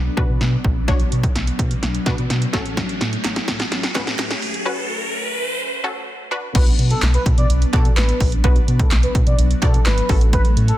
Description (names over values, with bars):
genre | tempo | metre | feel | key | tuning
dance-pop | 127 BPM | 4/4 | straight | B minor | A4 = 440 Hz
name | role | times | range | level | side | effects
airy breathy pad | sustained chords | 0.0-10.8 s | F#3 to D4 | -29 LUFS | left 1 dB | chorus, sidechain pumping
sub bass with octave | bass | 0.0-10.7 s | G#1 to B2 | -20 LUFS | equal | sidechain pumping
riser | sound effects | 1.4-5.6 s | none | -27 LUFS | equal | none
wide unison pluck | accompaniment | 0.2-10.8 s | A3 to D5 | -28 LUFS | left 1 dB | sidechain pumping
punchy analog drum machine | drums | 0.2-10.8 s | crash cymbal, handclaps, hi-hat, kick drum, snare drum | -18 LUFS | equal | none
group handclap | percussion | 3.2-10.0 s | none | -33 LUFS | right 12 dB | none
expressive synth lead | melody | 6.6-10.8 s | A4 to D5 | -26 LUFS | equal | chorus, sidechain pumping, ping-pong delay
room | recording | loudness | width
little or no reverb | dense, heavily limited modern master, high-pass filter | -16 LUFS | side -14 dB against mid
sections
0.0-6.6 A section; 6.6-10.8 B section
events
build-up 0.0-6.6; drum fill 0.0-4.7; filter sweep 0.0-6.6; riser 1.4-6.6; drop 6.6-10.8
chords
0.0 Bm; 2.5 F#m/A; 6.3 Bm; 10.1 F#m